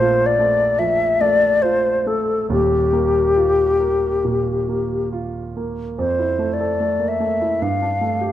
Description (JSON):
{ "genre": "classical, impressionist duo for flute and grand piano", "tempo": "68-79 BPM", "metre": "4/4", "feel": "rubato", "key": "F major", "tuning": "A4 = 440 Hz", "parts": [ { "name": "mellow hollow concert flute", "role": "melody", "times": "0.0-8.3 s", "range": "G4 to F5", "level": "-17 LUFS", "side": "left 2 dB", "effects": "none" }, { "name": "warm grand piano", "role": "accompaniment", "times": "0.0-8.3 s", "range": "Eb1 to A4", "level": "-22 LUFS", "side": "right 4 dB", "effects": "none" } ], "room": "moderate recital hall reverb, RT60 1.6 s", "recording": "close, detailed microphones", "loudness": "-16 LUFS", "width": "side -12 dB against mid", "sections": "0.0-6.0 A section; 6.0-8.3 B section", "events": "none", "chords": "0.0 Bb5; 2.5 Ebadd9; 6.0 Fmaj7; 7.6 Gsus2" }